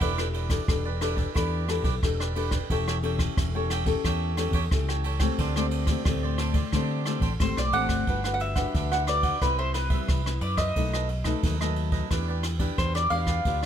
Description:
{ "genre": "samba and choro", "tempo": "89 BPM", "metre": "4/4", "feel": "straight", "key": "unclear", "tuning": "A4 = 441 Hz", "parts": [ { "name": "cavaquinho", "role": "accompaniment", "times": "0.0-13.7 s", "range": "D4 to G5", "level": "-33 LUFS", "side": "right 6 dB", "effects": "none" }, { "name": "nylon-string guitar", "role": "accompaniment", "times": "0.0-13.7 s", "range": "F#2 to B4", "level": "-32 LUFS", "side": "left 6 dB", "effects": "none" }, { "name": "fingered electric bass", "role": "bass", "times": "0.0-13.7 s", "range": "E1 to D3", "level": "-28 LUFS", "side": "equal", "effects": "none" }, { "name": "jazz brush drum kit", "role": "drums", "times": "0.0-13.7 s", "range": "kick drum, ride cymbal, rim click", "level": "-29 LUFS", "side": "equal", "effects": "none" }, { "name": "mandolin", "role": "melody", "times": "7.4-13.7 s", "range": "B4 to F#5", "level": "-28 LUFS", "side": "equal", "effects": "slapback echo" } ], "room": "little or no reverb", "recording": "close, detailed microphones", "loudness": "-24 LUFS", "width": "side -9 dB against mid", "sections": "0.0-8.1 A section; 8.1-13.7 B section", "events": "none", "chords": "0.0 Em7; 2.7 A7/E; 5.4 D7sus4; 8.1 Gmaj7; 9.4 Cmaj7; 10.8 B7; 12.1 Em7" }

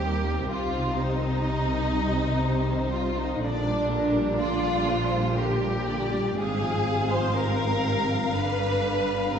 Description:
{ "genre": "classical, slow romantic movement for string orchestra", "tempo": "61 BPM", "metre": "3/4", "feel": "rubato", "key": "C minor", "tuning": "A4 = 440 Hz", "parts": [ { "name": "warm studio violin section", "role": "melody", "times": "0.0-9.4 s", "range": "Bb4 to F5", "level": "-34 LUFS", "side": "left 4 dB", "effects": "none" }, { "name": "rich studio violin section", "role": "second line", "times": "0.0-9.4 s", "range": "D4 to C5", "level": "-27 LUFS", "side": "left 1 dB", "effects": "none" }, { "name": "warm studio viola section", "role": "accompaniment", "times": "0.0-9.4 s", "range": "C3 to D4", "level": "-31 LUFS", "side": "right 1 dB", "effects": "none" }, { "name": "rich chamber double bass section", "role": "bass", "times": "0.0-9.4 s", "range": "G1 to Eb2", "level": "-31 LUFS", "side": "right 2 dB", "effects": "none" }, { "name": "warm chamber cello section", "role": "bass", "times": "0.0-9.4 s", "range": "Eb2 to C3", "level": "-30 LUFS", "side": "right 1 dB", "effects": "none" } ], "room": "wet scoring stage reverb, RT60 1.9 s", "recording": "dark, warm production, nothing above 8.0 kHz", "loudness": "-23 LUFS", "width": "side -7 dB against mid", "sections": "0.0-9.4 A section", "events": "none", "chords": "0.0 Cm/Eb; 0.5 Cm; 3.4 Gm/Bb; 6.4 Fm/Ab; 8.3 G" }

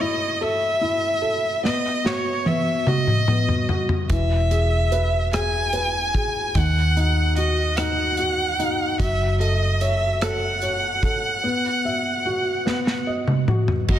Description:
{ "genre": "six-eight pop ballad", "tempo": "49 BPM (dotted quarters)", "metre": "6/8", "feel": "straight", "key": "unclear", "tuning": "A4 = 441 Hz", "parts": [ { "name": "rich violin", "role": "melody", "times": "0.0-14.0 s", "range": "C#5 to G#5", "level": "-23 LUFS", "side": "right 1 dB", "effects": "tape echo" }, { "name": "felt-muted upright piano", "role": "accompaniment", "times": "0.0-14.0 s", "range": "D#3 to E5", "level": "-26 LUFS", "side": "left 2 dB", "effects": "none" }, { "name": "modern studio drum kit", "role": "drums", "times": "1.7-14.0 s", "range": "crash cymbal, hi-hat, kick drum, rim click, snare drum, toms", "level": "-23 LUFS", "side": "equal", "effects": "none" }, { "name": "vintage muted fingered electric bass", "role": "bass", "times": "4.1-14.0 s", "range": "E1 to D#2", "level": "-23 LUFS", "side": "equal", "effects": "none" } ], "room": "light reverb, small room reverb", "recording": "dense, heavily limited modern master", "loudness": "-19 LUFS", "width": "side -11 dB against mid", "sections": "0.0-13.9 A section", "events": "drum fill 1.6-4.1, 12.7-13.9", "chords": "0.0 A5; 1.6 B; 4.1 E; 6.6 D#m; 9.0 F#m; 11.4 Bsus4; 12.7 B" }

